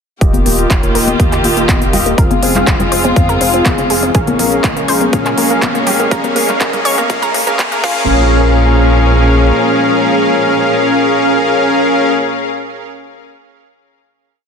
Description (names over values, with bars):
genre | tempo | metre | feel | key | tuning
progressive house | 122 BPM | 4/4 | straight | Bb dorian | A4 = 439 Hz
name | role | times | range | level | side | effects
dark chamber string section | sustained chords | 0.2-12.1 s | Bb2 to G4 | -18 LUFS | equal | sidechain pumping
analog pluck | arpeggios | 0.2-12.1 s | Bb3 to Db5 | -20 LUFS | right 1 dB | chorus, sidechain pumping, ping-pong delay
soft supersaw | stabs | 0.2-12.1 s | Bb3 to F5 | -14 LUFS | left 1 dB | vintage 12-bit sampler grit, sidechain pumping, low-pass filter, ping-pong delay
round analog bass | bass | 0.2-9.5 s | Eb1 to Bb2 | -17 LUFS | equal | sidechain pumping
big-room dance drum kit | drums | 0.2-7.9 s | crash cymbal, handclaps, hi-hat | -18 LUFS | equal | overdrive, sidechain pumping on hats, sidechain pumping on cymbals
electronic kick drum | drums | 0.2-7.9 s | none | -15 LUFS | equal | overdrive
riser | sound effects | 3.1-8.1 s | none | -25 LUFS | right 1 dB | none
congas | percussion | 0.3-7.7 s | none | -22 LUFS | left 6 dB | sidechain pumping on perc
room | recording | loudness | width
moderate lush hall reverb, RT60 1.9 s | dense, heavily limited modern master, high-pass filter | -10 LUFS | side -6 dB against mid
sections
0.2-8.1 build; 8.1-12.0 final hit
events
build-up 0.2-8.1; filter sweep on synth arpeggio sound 0.2-8.1; filter sweep on supersaw synth 0.2-8.1; filter sweep 0.2-8.1; riser 3.1-8.1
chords
0.2 Ebadd9; 2.2 Fm; 4.1 Bbm7